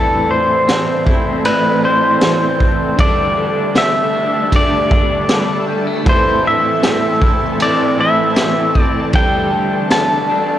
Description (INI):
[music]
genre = dream pop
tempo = 78 BPM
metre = 4/4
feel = straight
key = A minor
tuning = A4 = 439 Hz
[part]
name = pedal steel guitar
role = melody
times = 0.0-10.6 s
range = A4 to A5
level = -16 LUFS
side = left 1 dB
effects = analog delay
[part]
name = clean electric guitar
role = accompaniment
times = 0.0-10.6 s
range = A2 to A4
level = -22 LUFS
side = right 3 dB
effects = tremolo, wide subtle chorus
[part]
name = shimmering ambient pad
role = sustained chords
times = 0.0-10.6 s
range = E3 to A4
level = -21 LUFS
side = right 1 dB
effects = chorus, built-in reverb
[part]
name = electric guitar at the edge of break-up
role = arpeggios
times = 0.0-10.6 s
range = E3 to E4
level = -23 LUFS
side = left 3 dB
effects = wide subtle chorus, analog delay
[part]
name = vibraphone with soft mallets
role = texture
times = 0.0-3.2 s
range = D5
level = -27 LUFS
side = moving between left 3 dB and right 3 dB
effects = auto-pan, analog delay
[part]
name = raw garage drum kit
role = drums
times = 0.7-10.1 s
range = kick drum, ride cymbal, snare drum, tambourine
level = -17 LUFS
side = equal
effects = none
[sound]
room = light reverb, studio reverb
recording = dry, gritty hardware recording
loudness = -12 LUFS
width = side -12 dB against mid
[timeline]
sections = 0.0-10.6 A section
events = none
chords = 0.0 Am; 3.0 Dsus4; 6.1 Am; 9.1 Dsus4